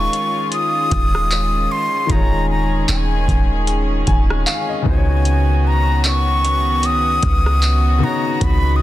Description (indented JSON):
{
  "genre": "contemporary R&B",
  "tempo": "76 BPM",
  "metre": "4/4",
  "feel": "swing 58% on 16ths",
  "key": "unclear",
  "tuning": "A4 = 440 Hz",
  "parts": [
    { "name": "breathy concert flute", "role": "melody", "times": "0.0-8.8 s", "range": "Ab5 to Eb6", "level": "-20 LUFS", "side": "left 2 dB", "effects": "digital delay" },
    { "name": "clear grand piano", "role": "accompaniment", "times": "0.0-8.8 s", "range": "Db3 to Ab5", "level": "-24 LUFS", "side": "left 5 dB", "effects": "none" },
    { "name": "warm studio string section", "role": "sustained chords", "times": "0.0-8.8 s", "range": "Eb3 to Ab4", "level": "-24 LUFS", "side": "right 1 dB", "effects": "none" },
    { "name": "warm 808-style bass", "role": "bass", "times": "0.0-8.8 s", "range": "Eb1 to Db3", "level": "-18 LUFS", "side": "equal", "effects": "none" },
    { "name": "booming analog drum machine", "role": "drums", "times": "0.1-8.6 s", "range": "handclaps, hi-hat, kick drum, rim click", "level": "-19 LUFS", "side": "equal", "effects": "vintage 12-bit sampler grit, soft clipping on snare" }
  ],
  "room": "small room ambience",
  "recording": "dense, heavily limited modern master",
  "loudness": "-14 LUFS",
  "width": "side -14 dB against mid",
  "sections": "0.0-8.8 A section",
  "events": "none",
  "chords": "0.0 Eb9sus4; 4.9 Db9sus4"
}